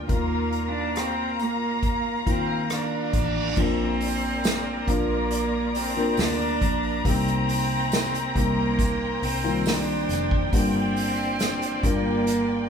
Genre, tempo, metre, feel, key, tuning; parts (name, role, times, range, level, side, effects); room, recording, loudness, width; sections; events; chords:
pop ballad; 69 BPM; 4/4; straight; Bb major; A4 = 443 Hz
felt-muted upright piano; accompaniment; 0.0-12.7 s; G2 to Bb4; -27 LUFS; left 2 dB
warm studio string section; sustained chords; 0.0-12.7 s; Eb3 to Bb5; -30 LUFS; left 2 dB
vintage muted fingered electric bass; bass; 0.0-12.7 s; F1 to Eb2; -32 LUFS; equal
rich cello; melody; 0.1-12.7 s; Bb3 to D4; -28 LUFS; right 2 dB
unplugged drum kit; drums; 0.1-12.5 s; crash cymbal, hi-hat, kick drum, rim click, snare drum; -27 LUFS; equal
reverse cymbal; sound effects; 3.0-3.6 s; -36 LUFS; right 4 dB
tambourine; percussion; 4.4-11.6 s; -40 LUFS; right 6 dB
wet large studio reverb, RT60 1.2 s; band playing live in one room; -22 LUFS; side -7 dB against mid
0.0-3.6 A section; 3.6-12.7 B section
reverse cymbal 3.0-3.6
0.1 Ebsus2; 3.6 Bb; 7.1 Cm7; 10.5 Gm7